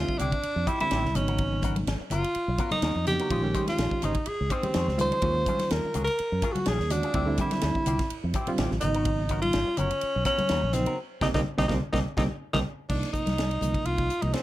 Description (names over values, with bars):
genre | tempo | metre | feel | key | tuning
electric jazz fusion | 125 BPM | 4/4 | swing 54% on 16ths | unclear | A4 = 437 Hz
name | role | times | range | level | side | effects
clear tenor saxophone | melody | 0.0-14.4 s | C4 to C5 | -28 LUFS | equal | none
overdriven reed electric piano | accompaniment | 0.0-14.4 s | C3 to E5 | -32 LUFS | right 2 dB | harmonic tremolo
mellow fretless electric bass | bass | 0.0-14.3 s | Gb1 to Gb2 | -29 LUFS | equal | wide subtle chorus
electric guitar with an envelope filter | stabs | 0.1-12.6 s | F3 to C5 | -37 LUFS | left 3 dB | wide subtle chorus
tight funk drum kit | drums | 0.1-14.4 s | crash cymbal, hi-hat, kick drum, ride cymbal, snare drum | -32 LUFS | equal | none
congas | percussion | 0.2-14.3 s | none | -35 LUFS | left 2 dB | none
room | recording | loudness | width
moderate club reverb, RT60 0.5 s | none | -24 LUFS | side -15 dB against mid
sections
0.0-12.9 A section; 12.9-14.4 B section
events
band accent 11.0-12.9; drum fill 11.9-12.9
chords
0.0 Dm11; 1.2 Abm11; 3.3 Bbm11; 5.2 Ebm11; 7.1 Dm11; 8.8 Abm11; 11.0 Cm7